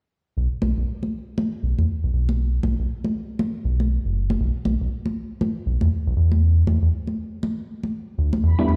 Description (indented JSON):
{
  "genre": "deep house",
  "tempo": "119 BPM",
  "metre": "4/4",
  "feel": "swing 61% on 16ths",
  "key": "B minor",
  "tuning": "A4 = 440 Hz",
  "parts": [
    { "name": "round analog bass", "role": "bass", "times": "0.4-8.8 s", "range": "F#1 to E2", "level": "-21 LUFS", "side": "equal", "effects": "none" },
    { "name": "congas", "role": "percussion", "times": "0.6-8.8 s", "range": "none", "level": "-29 LUFS", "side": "equal", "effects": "none" },
    { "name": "analog string pad", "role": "texture", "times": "8.4-8.8 s", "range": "B5", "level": "-35 LUFS", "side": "equal", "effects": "ensemble chorus" },
    { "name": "mellow FM electric piano", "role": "stabs", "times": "8.6-8.8 s", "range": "G3 to E4", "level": "-21 LUFS", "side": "equal", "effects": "chorus, tremolo" }
  ],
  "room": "light reverb",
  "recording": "played on a big sound system in a bare room, cassette tape, large studio reverb",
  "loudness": "-23 LUFS",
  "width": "mono",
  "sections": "0.4-8.8 A section",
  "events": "filter sweep on analog synth bass 0.4-8.8",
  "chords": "0.4 B5; 6.2 E7(no3)"
}